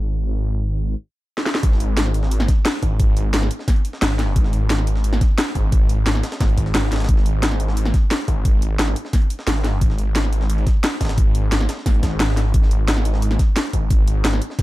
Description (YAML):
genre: dark technical drum and bass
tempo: 176 BPM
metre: 4/4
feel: straight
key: unclear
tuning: A4 = 442 Hz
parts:
  - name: snarling distorted saw bass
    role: bass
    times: 0.0-14.4 s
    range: G#1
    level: -19 LUFS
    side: equal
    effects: distortion, tube saturation
  - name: drum and bass drum kit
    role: drums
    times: 1.4-14.6 s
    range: hi-hat, snare drum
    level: -23 LUFS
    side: equal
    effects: overdrive
  - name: breakbeat sampler-style drum kit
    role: drums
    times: 1.6-14.6 s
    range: hi-hat, snare drum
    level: -34 LUFS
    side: equal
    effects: high-pass filter on hats, high-pass filter on snare
  - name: electronic kick drum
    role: drums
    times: 1.6-14.6 s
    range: none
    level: -17 LUFS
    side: equal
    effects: overdrive
room: digital ambience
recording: dark, warm production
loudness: -16 LUFS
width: side -17 dB against mid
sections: 0.0-1.6 A section; 1.6-14.6 B section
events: stop 0.9-1.6; drum fill 1.4; drop 1.6-14.6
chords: none